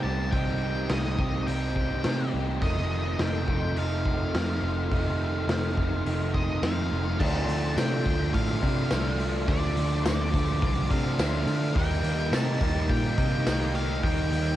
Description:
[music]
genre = rock, shoegaze and dream pop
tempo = 105 BPM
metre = 4/4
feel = straight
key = unclear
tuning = A4 = 440 Hz
[part]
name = octave-fuzz lead guitar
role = melody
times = 0.0-14.6 s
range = D5 to A5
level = -35 LUFS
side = equal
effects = distortion, cassette tape, tape echo
[part]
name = direct-recorded clean electric guitar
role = arpeggios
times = 0.0-14.6 s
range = Eb3 to G4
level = -42 LUFS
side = left 8 dB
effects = none
[part]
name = biting overdriven guitar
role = riff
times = 0.0-14.6 s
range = F2 to Eb4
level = -32 LUFS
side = right 9 dB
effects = reverse reverb
[part]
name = overdriven electric guitar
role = riff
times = 0.0-14.6 s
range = F2 to G4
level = -34 LUFS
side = left 8 dB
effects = ensemble chorus
[part]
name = vintage muted picked electric bass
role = bass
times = 0.0-14.6 s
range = F1 to D3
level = -28 LUFS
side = equal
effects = none
[part]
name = raw garage drum kit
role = drums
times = 0.3-14.5 s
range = crash cymbal, hi-hat, kick drum, snare drum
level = -30 LUFS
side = equal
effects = cassette tape
[part]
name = tambourine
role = percussion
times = 7.8-13.6 s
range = none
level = -44 LUFS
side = right 12 dB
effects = none
[sound]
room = little or no reverb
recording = home recording on cassette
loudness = -24 LUFS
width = side -13 dB against mid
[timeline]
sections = 0.0-7.2 A section; 7.2-14.6 B section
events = none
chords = 0.0 Cm7; 2.6 F7; 7.2 Dm7; 11.8 Cm7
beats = | 0.33 0.90 1.47 2.05 | 2.62 3.19 3.77 4.34 | 4.91 5.48 6.06 6.63 | 7.20 7.77 8.34 8.91 | 9.48 10.05 10.62 11.19 | 11.76 12.33 12.90 13.47 | 14.04

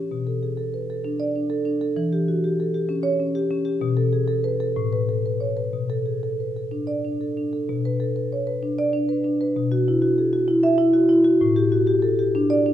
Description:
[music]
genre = classical, contemporary piece for solo marimba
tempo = 64 BPM (dotted quarters)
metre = 6/8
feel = rubato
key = B minor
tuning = A4 = 441 Hz
[part]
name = marimba with medium mallets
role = solo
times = 0.0-12.7 s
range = A2 to E5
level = -20 LUFS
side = equal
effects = none
[sound]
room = wet recital hall reverb, RT60 1.4 s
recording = minimal, uncompressed stereo recording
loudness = -20 LUFS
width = side -11 dB against mid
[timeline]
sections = 0.0-7.7 A section; 7.7-12.7 A section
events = none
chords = 0.1 Bm7; 2.0 Em6; 3.8 Asus2/B; 4.8 Aadd9; 5.7 Bm7; 7.7 Bm; 9.6 N.C.; 11.4 A7sus4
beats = | 0.11 1.05 | 1.98 2.90 | 3.82 4.76 | 5.73 6.71 | 7.69 8.63 | 9.57 10.49 | 11.41 12.34

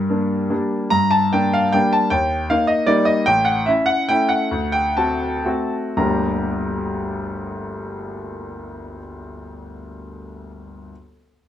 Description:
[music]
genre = classical, piano waltz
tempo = 108-163 BPM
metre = 3/4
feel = rubato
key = G minor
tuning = A4 = 440 Hz
[part]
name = bright grand piano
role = solo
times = 0.0-10.9 s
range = G1 to Bb5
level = -18 LUFS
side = equal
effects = none
[sound]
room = light reverb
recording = close, detailed microphones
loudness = -17 LUFS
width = side -11 dB against mid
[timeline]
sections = 0.9-6.0 A section; 6.0-8.8 B section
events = slowing down 2.7-6.0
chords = 0.0 Gm; 2.1 Eb; 3.3 A; 4.5 D7; 6.0 Gm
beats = 0.10 0.51 | 0.92 1.34 1.74 | 2.12 2.50 2.88 | 3.28 3.68 4.10 | 4.53 4.97 5.46 | 5.98 6.44 6.92 | 7.38 7.83 8.31

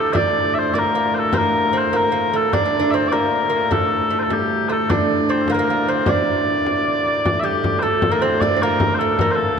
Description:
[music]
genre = medieval dance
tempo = 102 BPM (dotted quarters)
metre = 6/8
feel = straight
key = unclear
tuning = A4 = 441 Hz
[part]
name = mellow small bagpipes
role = melody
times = 0.0-9.6 s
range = G4 to E5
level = -19 LUFS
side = left 1 dB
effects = none
[part]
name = lute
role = second line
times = 0.0-9.6 s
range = G3 to D4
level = -22 LUFS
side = right 4 dB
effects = none
[part]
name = pedal harmonium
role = drone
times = 0.0-9.6 s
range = D2 to A2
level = -25 LUFS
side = left 1 dB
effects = none
[part]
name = frame drum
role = percussion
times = 0.1-9.4 s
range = none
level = -24 LUFS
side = left 2 dB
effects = none
[sound]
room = wet cathedral reverb, RT60 5.5 s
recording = minimal, uncompressed stereo recording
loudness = -16 LUFS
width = side -6 dB against mid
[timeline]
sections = 0.0-7.2 A section; 7.2-9.6 B section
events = none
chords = none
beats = | 0.15 0.74 | 1.34 1.93 | 2.53 3.12 | 3.71 4.30 | 4.89 5.48 | 6.07 6.66 | 7.25 7.83 | 8.42 9.00 | 9.59

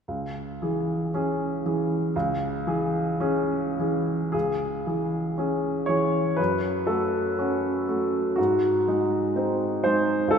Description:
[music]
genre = classical, romantic character piece for solo piano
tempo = 49-62 BPM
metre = 2/4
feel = rubato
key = C# minor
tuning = A4 = 440 Hz
[part]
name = warm baby grand piano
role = solo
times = 0.1-10.4 s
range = C#2 to C#5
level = -23 LUFS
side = equal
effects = none
[sound]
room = wet church reverb, RT60 3.0 s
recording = recorded in a church or concert hall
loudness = -23 LUFS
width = side -7 dB against mid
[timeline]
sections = 0.1-4.3 A section; 4.3-10.4 B section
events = none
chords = 0.1 C#m; 6.4 F#m; 8.4 G#7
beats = | 0.08 1.14 | 2.14 3.19 | 4.34 5.38 | 6.39 7.38 | 8.38 9.35 | 10.32

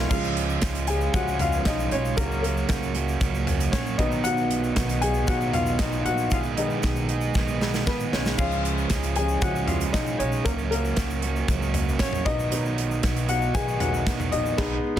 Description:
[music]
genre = piano-driven pop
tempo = 116 BPM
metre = 4/4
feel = straight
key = unclear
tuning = A4 = 435 Hz
[part]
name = clear baby grand piano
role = accompaniment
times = 0.0-15.0 s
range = G#2 to G#5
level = -27 LUFS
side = left 3 dB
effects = none
[part]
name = crunchy overdriven guitar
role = riff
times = 0.0-15.0 s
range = B2 to G#4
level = -28 LUFS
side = right 6 dB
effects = spring reverb
[part]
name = upright bass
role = bass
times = 0.0-15.0 s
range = A#1 to C#2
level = -28 LUFS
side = equal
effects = none
[part]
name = modern studio drum kit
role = drums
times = 0.1-15.0 s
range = crash cymbal, hi-hat, kick drum, snare drum, toms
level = -28 LUFS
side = equal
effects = none
[part]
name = egg shaker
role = percussion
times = 0.1-14.6 s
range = none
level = -43 LUFS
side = left 7 dB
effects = none
[sound]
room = light reverb, small room ambience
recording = dense, heavily limited modern master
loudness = -22 LUFS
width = side -11 dB against mid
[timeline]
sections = 0.1-15.0 A section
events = grand piano solo 0.1-15.0; drum fill 7.4-8.4; band accent 14.6-15.0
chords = 0.1 C#; 2.2 F#/C#; 4.0 B; 6.3 G#m/B; 8.4 C#; 10.5 F#/C#; 12.3 B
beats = | 0.11 0.63 1.15 1.66 | 2.18 2.70 3.21 3.73 | 4.25 4.77 5.29 5.80 | 6.32 6.84 7.35 7.87 | 8.39 8.90 9.42 9.94 | 10.45 10.97 11.49 12.00 | 12.52 13.04 13.55 14.07 | 14.59

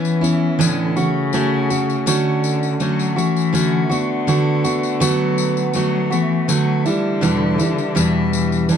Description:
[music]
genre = acoustic pop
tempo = 82 BPM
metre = 4/4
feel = straight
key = unclear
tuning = A4 = 442 Hz
[part]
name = rich cello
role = second line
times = 0.0-8.8 s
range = C#3 to G3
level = -21 LUFS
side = left 8 dB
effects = none
[part]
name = picked steel-string acoustic guitar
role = accompaniment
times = 0.0-8.8 s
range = E2 to F#4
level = -17 LUFS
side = right 3 dB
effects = none
[part]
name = tambourine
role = percussion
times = 0.0-8.8 s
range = none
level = -28 LUFS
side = left 9 dB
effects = none
[sound]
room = moderate studio reverb, RT60 0.8 s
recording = dark, warm production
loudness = -16 LUFS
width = side -8 dB against mid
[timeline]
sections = 0.0-8.8 A section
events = none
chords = 0.0 Aadd9; 1.0 Dmaj7; 3.9 Bm7/D; 6.9 Em7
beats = 0.59 | 1.33 2.07 2.80 3.54 | 4.28 5.01 5.75 6.49 | 7.22 7.96 8.70

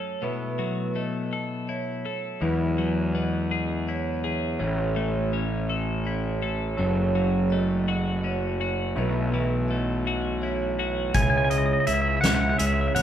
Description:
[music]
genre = post-rock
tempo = 55 BPM (dotted quarters)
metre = 6/8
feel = straight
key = unclear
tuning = A4 = 437 Hz
[part]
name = pedal steel guitar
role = sustained chords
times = 0.0-13.0 s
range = C#3 to A4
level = -34 LUFS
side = equal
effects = none
[part]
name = twelve-string electric guitar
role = arpeggios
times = 0.0-13.0 s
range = F#2 to A4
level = -29 LUFS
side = left 3 dB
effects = none
[part]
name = vibraphone with medium mallets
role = arpeggios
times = 0.0-13.0 s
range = B4 to E5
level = -32 LUFS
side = right 8 dB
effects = none
[part]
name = fuzz picked electric bass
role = bass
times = 2.4-13.0 s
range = F#1 to E2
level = -27 LUFS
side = equal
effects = overdrive
[part]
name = twangy electric guitar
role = melody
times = 11.1-13.0 s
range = D#5 to G#5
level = -24 LUFS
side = equal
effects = none
[part]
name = soft-mallet drum kit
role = drums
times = 11.1-13.0 s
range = hi-hat, kick drum, snare drum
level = -26 LUFS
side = right 1 dB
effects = none
[sound]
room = wet recital hall reverb, RT60 1.6 s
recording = recorded in a church or concert hall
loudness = -23 LUFS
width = side -10 dB against mid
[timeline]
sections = 0.0-11.1 A section; 11.1-13.0 B section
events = none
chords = 0.2 B7sus4; 2.4 Eadd9; 4.6 A; 6.8 F#m; 9.0 B7sus4; 11.1 C#m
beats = | 0.23 1.32 | 2.41 3.51 | 4.60 5.69 | 6.78 7.88 | 8.97 10.06 | 11.14 12.23

